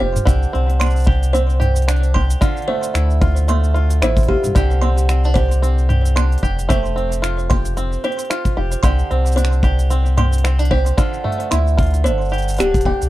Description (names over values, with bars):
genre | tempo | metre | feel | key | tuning
folktronica | 112 BPM | 4/4 | swing 56% on 16ths | C major | A4 = 440 Hz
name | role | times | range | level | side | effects
kalimba | second line | 0.0-13.0 s | G4 to C6 | -23 LUFS | right 1 dB | vintage 12-bit sampler grit, tape echo
bluegrass banjo | arpeggios | 0.0-13.1 s | D3 to G4 | -23 LUFS | right 1 dB | tape echo
warm sub bass | bass | 0.0-13.1 s | D1 to G2 | -16 LUFS | equal | none
organic electronic drum kit | drums | 0.2-13.1 s | finger snaps, hi-hat, shaker, toms | -26 LUFS | equal | none
kick drum | drums | 0.3-13.0 s | none | -18 LUFS | equal | none
room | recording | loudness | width
little or no reverb | dry, close 1970s-style studio recording | -14 LUFS | side -16 dB against mid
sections
0.0-13.1 A section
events
band accent 12.6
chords
0.3 Csus2; 2.4 Dmadd9; 4.6 Csus2; 6.7 Fadd9; 8.8 Csus2; 11.0 Dmadd9; 12.1 G5